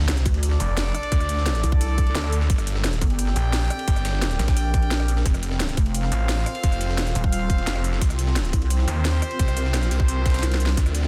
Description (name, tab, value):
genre	dark technical drum and bass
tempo	174 BPM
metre	4/4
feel	straight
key	unclear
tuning	A4 = 439 Hz
part	snarling distorted saw bass	bass	0.0-11.1 s	F1 to Eb2	-25 LUFS	equal	distortion
part	breakbeat sampler-style drum kit	drums	0.0-11.1 s	hi-hat, ride cymbal, snare drum	-39 LUFS	equal	none
part	impact	sound effects	0.0-1.1 s	none	-38 LUFS	equal	none
part	drum and bass drum kit	drums	0.1-11.0 s	hi-hat, rim click, snare drum	-32 LUFS	equal	studio reverb
part	clear brass ensemble	stabs	0.3-10.8 s	C4 to G5	-33 LUFS	equal	delay
part	pulsing pluck wobble bass	bass	0.3-10.8 s	Eb1 to D2	-24 LUFS	equal	chorus
part	electronic kick drum	drums	0.3-10.8 s	none	-23 LUFS	equal	overdrive, studio reverb
part	granular cloud pad	texture	1.6-11.1 s	C4 to Bb4	-38 LUFS	equal	built-in reverb, sidechain pumping
part	dark analog pad	sustained chords	10.8-11.1 s	D4 to D5	-38 LUFS	equal	chorus, sidechain pumping
room	digital ambience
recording	dense, heavily limited modern master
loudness	-22 LUFS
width	mono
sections	0.0-11.1 A section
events	impact 0.0-1.1; drum fill 10.4-10.8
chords	0.0 Dm; 2.5 Gm; 5.3 F; 8.0 Cm7